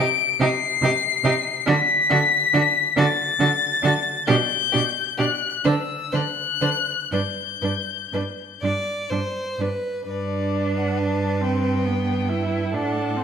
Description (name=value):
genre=classical, slow romantic movement for string quartet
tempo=39-48 BPM (dotted quarters)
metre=6/8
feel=rubato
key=G major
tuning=A4 = 439 Hz
part: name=dark violin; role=melody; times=0.0-13.2 s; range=D5 to D7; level=-22 LUFS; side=left 6 dB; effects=none
part: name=rich violin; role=second line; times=0.0-13.2 s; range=F#4 to D5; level=-29 LUFS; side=left 2 dB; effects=none
part: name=rich viola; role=accompaniment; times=0.0-13.2 s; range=B3 to E4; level=-27 LUFS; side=right 3 dB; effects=none
part: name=clear cello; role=bass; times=0.0-13.2 s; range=G2 to D3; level=-25 LUFS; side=right 3 dB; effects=none
room=moderate recital hall reverb, RT60 1.7 s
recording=none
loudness=-19 LUFS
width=side -7 dB against mid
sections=0.0-10.1 A section; 10.1-13.2 B section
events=none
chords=0.0 Cm; 1.7 D5; 4.3 G/B; 5.7 D; 7.1 G; 12.7 D7/A